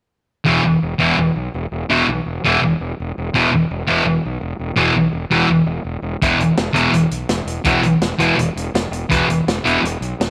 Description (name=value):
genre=garage rock duo or trio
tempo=167 BPM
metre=4/4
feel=straight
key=unclear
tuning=A4 = 440 Hz
part: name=thick fuzz guitar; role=riff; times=0.5-9.8 s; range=E2 to E3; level=-18 LUFS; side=equal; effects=distortion
part: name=fuzz fingered electric bass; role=bass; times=0.5-10.3 s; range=E1 to B1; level=-27 LUFS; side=equal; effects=overdrive
part: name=vintage drum kit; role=drums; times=6.2-10.3 s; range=hi-hat, kick drum, snare drum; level=-25 LUFS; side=equal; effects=none
room=light reverb, small room reverb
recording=none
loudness=-18 LUFS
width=mono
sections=0.5-10.3 A section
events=none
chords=0.5 E5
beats=| 0.48 0.84 1.19 1.55 | 1.91 2.27 2.63 2.99 | 3.35 3.71 4.07 4.42 | 4.78 5.14 5.50 5.86 | 6.22 6.58 6.95 7.31 | 7.67 8.03 8.39 8.75 | 9.11 9.47 9.83 10.20